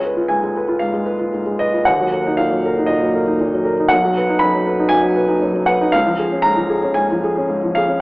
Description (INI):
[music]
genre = classical, romantic character piece for solo piano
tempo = 116 BPM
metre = 4/4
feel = rubato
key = unclear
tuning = A4 = 436 Hz
[part]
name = warm baby grand piano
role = solo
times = 0.0-8.0 s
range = B1 to B5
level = -15 LUFS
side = equal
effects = none
[sound]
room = moderate recital hall reverb, RT60 1.5 s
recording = AM radio sound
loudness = -15 LUFS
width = side -23 dB against mid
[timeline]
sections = 0.0-8.0 A section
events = none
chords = 0.0 C#7; 1.9 D#m; 3.9 B; 5.9 C#